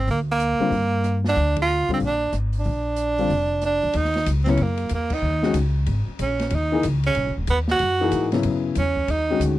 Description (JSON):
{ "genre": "modal jazz", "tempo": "186 BPM", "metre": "4/4", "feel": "swing 64% on 8ths", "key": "G phrygian, Eb phrygian from 3.9 s", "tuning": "A4 = 440 Hz", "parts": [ { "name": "clear tenor saxophone", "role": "melody", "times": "0.0-9.4 s", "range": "Bb3 to F#4", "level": "-22 LUFS", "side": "right 3 dB", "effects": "none" }, { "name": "upright bass", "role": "bass", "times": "0.0-9.6 s", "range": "D#1 to Ab2", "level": "-24 LUFS", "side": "equal", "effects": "none" }, { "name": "open jazz drum kit", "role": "drums", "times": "0.1-9.5 s", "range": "crash cymbal, hi-hat, kick drum, ride cymbal, rim click, snare drum", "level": "-33 LUFS", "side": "equal", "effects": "none" }, { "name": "warm baby grand piano", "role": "accompaniment", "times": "0.6-9.6 s", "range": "Db3 to Ab4", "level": "-23 LUFS", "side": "left 5 dB", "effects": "none" } ], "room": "little or no reverb", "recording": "dry, close 1970s-style studio recording", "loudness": "-20 LUFS", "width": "side -15 dB against mid", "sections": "0.0-3.9 A section; 3.9-9.6 B section", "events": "band accent 1.5, 5.1", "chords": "0.0 Gm; 2.7 Bb; 3.9 Ebm7; 6.5 B; 9.1 Ebm7" }